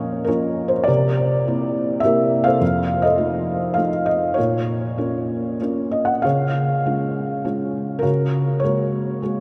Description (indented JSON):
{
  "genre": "classical, lyrical solo piano",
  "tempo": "101 BPM",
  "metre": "3/4",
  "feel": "rubato",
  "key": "Bb minor, Db major from 6.2 s",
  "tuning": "A4 = 439 Hz",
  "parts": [
    { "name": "felt-muted upright piano", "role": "solo", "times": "0.0-9.4 s", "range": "F2 to Gb5", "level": "-20 LUFS", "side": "equal", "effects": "none" }
  ],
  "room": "wet cathedral reverb, RT60 5.6 s",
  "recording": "in a vast, echoing space",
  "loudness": "-20 LUFS",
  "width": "mono",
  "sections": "0.0-6.2 A section; 6.2-9.4 B section",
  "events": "none",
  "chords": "0.0 Bbm; 0.9 C7; 2.6 F7; 4.4 Bbm; 6.2 Db; 8.0 Gbadd9/Db",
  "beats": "0.29 | 0.89 1.47 2.04 | 2.62 3.19 3.78 | 4.38 4.98 5.61 | 6.25 6.85 7.44 | 8.04 8.63 9.22"
}